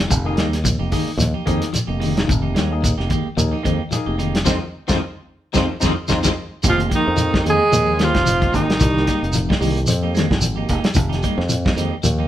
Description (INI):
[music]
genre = afrobeat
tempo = 111 BPM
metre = 4/4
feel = swing 56% on 16ths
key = F minor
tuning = A4 = 440 Hz
[part]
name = electric guitar at the edge of break-up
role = arpeggios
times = 0.0-12.2 s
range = Eb3 to Ab3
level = -25 LUFS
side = left 4 dB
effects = tremolo
[part]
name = clean electric guitar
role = stabs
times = 0.0-12.3 s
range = Ab3 to G4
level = -27 LUFS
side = right 5 dB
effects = none
[part]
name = fingered electric bass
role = bass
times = 0.0-12.3 s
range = F1 to F2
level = -22 LUFS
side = equal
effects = none
[part]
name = warm soul drum kit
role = drums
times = 0.1-12.2 s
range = hi-hat, kick drum, snare drum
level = -21 LUFS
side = equal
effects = none
[part]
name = shekere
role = percussion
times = 0.1-12.2 s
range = none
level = -24 LUFS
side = right 1 dB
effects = none
[part]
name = barky tine electric piano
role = accompaniment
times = 0.3-6.3 s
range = Bb3 to Ab4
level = -27 LUFS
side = left 3 dB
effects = overdrive
[part]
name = clear alto saxophone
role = melody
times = 6.7-9.6 s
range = Eb4 to Ab4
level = -19 LUFS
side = right 1 dB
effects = none
[part]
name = bright trombone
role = second line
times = 6.7-9.6 s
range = Eb3 to Ab3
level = -25 LUFS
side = right 2 dB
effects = none
[sound]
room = moderate studio reverb, RT60 0.8 s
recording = band playing live in one room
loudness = -16 LUFS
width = side -12 dB against mid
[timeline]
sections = 0.0-6.6 A section; 6.6-12.3 B section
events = band accent 4.5-6.6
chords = 0.0 Fm11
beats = | 0.11 0.66 1.20 1.75 | 2.29 2.83 3.38 3.92 | 4.46 5.01 5.55 6.09 | 6.63 7.18 7.72 8.26 | 8.80 9.34 9.88 10.42 | 10.96 11.50 12.04